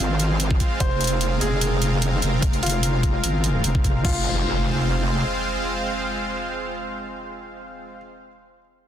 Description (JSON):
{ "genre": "heavy wobble dubstep", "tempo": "148 BPM", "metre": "4/4", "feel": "swing 53% on 16ths, half-time", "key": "F minor", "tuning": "A4 = 439 Hz", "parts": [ { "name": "warm grand piano", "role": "melody", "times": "0.0-8.0 s", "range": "F4 to C5", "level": "-30 LUFS", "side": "left 1 dB", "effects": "digital delay" }, { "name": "supersaw pad", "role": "sustained chords", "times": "0.0-8.0 s", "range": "Ab3 to F5", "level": "-27 LUFS", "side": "right 1 dB", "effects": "sidechain pumping" }, { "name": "wobble bass", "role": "bass", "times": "0.0-5.2 s", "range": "F1 to Ab1", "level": "-22 LUFS", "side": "equal", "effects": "chorus, overdrive" }, { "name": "downlifter and impact", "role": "sound effects", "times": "0.0-0.8, 4.0-8.0 s", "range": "none", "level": "-32 LUFS", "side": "equal", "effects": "none" }, { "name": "dubstep drum kit", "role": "drums", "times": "0.2-4.1 s", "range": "crash cymbal, hi-hat", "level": "-27 LUFS", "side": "equal", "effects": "none" }, { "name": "electronic kick drum", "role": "drums", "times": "0.5-4.1 s", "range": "none", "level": "-21 LUFS", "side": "equal", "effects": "overdrive" } ], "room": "light reverb", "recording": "dense, heavily limited modern master", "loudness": "-20 LUFS", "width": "side -10 dB against mid", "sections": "0.0-4.0 A section; 4.0-7.3 B section", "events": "filter sweep on wobble bass 0.0-4.0", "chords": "0.0 Fm", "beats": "0.40 | 0.80 1.21 1.61 2.02 | 2.42 2.83 3.23 3.64 | 4.05 4.45 4.86 5.26 | 5.67 6.07 6.48 6.88" }